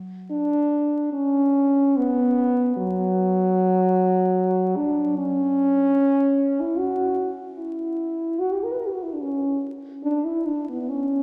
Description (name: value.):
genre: classical, free, expressive piece for unaccompanied French horn.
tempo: 74 BPM.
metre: 3/4.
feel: rubato.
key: unclear.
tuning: A4 = 441 Hz.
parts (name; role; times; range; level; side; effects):
dark French horn; solo; 0.3-11.2 s; F#3 to B4; -22 LUFS; equal; none.
room: wet church reverb, RT60 3.2 s.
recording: vinyl crackle.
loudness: -22 LUFS.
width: mono.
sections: 0.0-11.2 A section.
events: none.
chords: none.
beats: | 0.31 1.13 1.96 | 2.77 3.57 4.38 | 5.18 5.99 6.78 | 7.56 8.38 9.20 | 10.02 10.88.